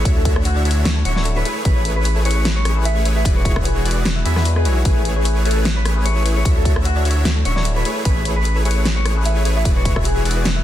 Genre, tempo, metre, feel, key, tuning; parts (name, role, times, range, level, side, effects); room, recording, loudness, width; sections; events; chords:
future bass; 150 BPM; 4/4; swing 54% on 16ths, half-time; A major; A4 = 440 Hz
mellow electric guitar; melody; 0.0-10.3 s; F#4 to E5; -26 LUFS; left 1 dB; sidechain pumping, ping-pong delay
overdriven tine electric piano; accompaniment; 0.0-10.6 s; G#3 to C#5; -29 LUFS; left 5 dB; phaser, sidechain pumping, ping-pong delay
supersaw chords; riff; 0.0-10.5 s; D3 to E5; -25 LUFS; right 1 dB; sidechain pumping
saturated sub bass; bass; 0.0-10.6 s; D1 to E2; -18 LUFS; equal; sidechain pumping
thumb-piano-like synth pluck; arpeggios; 0.1-10.6 s; F#4 to B5; -33 LUFS; left 6 dB
big-room dance drum kit; drums; 0.1-10.5 s; hi-hat, rim click, snare drum; -24 LUFS; left 1 dB; studio reverb
electronic kick drum; drums; 0.1-10.0 s; -18 LUFS; equal; studio reverb
little or no reverb; dense, heavily limited modern master; -15 LUFS; side -12 dB against mid
0.0-10.6 A section
0.1 Dmaj9; 1.5 Amaj9; 3.3 E7; 4.9 Amaj9; 6.5 Dmaj9; 7.9 Amaj9; 9.7 E7